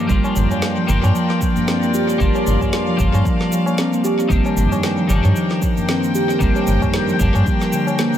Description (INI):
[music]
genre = organic downtempo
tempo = 114 BPM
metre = 4/4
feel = swing 57% on 16ths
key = G minor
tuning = A4 = 441 Hz
[part]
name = twelve-string electric guitar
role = accompaniment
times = 0.0-8.2 s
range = Eb3 to F4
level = -23 LUFS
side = left 3 dB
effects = analog chorus, sidechain pumping, tape echo
[part]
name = rich chamber string section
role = sustained chords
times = 0.0-8.2 s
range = F4 to G5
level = -26 LUFS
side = left 2 dB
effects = sidechain pumping
[part]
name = steel tongue drum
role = arpeggios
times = 0.1-8.2 s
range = D3 to G4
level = -19 LUFS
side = right 1 dB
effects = tape echo
[part]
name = round analog bass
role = bass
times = 0.1-7.4 s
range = G1 to G2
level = -17 LUFS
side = equal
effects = sidechain pumping
[part]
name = deep house drum kit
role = drums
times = 0.1-8.2 s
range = shaker, snare drum, toms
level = -26 LUFS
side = right 1 dB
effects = small room ambience, tape echo
[part]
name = electronic kick drum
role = drums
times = 0.1-7.6 s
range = none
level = -21 LUFS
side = equal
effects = small room ambience
[part]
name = tabla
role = percussion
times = 0.2-8.0 s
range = none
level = -30 LUFS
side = left 2 dB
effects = tape echo
[sound]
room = moderate spring reverb, RT60 2.1 s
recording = echo-heavy mix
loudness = -15 LUFS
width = side -10 dB against mid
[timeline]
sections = 0.1-8.2 A section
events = none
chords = 0.1 Gm7; 4.3 Cm7/G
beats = | 0.10 0.62 1.15 1.68 | 2.20 2.73 3.26 3.78 | 4.31 4.83 5.36 5.89 | 6.41 6.94 7.47 7.99